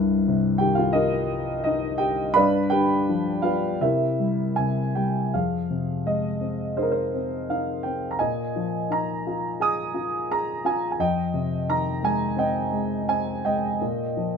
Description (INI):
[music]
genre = classical, lyrical solo piano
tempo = 84 BPM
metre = 4/4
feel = rubato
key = F minor from 5.3 s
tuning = A4 = 440 Hz
[part]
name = dark grand piano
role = solo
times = 0.0-14.4 s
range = C2 to Eb6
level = -22 LUFS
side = equal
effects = none
[sound]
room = light reverb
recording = minimal, uncompressed stereo recording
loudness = -22 LUFS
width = side -6 dB against mid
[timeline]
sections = 0.0-5.3 A section; 5.3-14.4 B section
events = none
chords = 0.0 Cm7; 2.4 G7; 3.8 C7; 5.3 Fm7; 8.2 Bb7sus4; 11.0 Fm7; 13.8 Bbsus4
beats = 0.27 0.97 1.67 | 2.38 3.09 3.82 4.57 | 5.33 6.06 6.78 7.49 | 8.20 8.92 9.62 10.31 | 11.00 11.69 12.38 13.09 | 13.80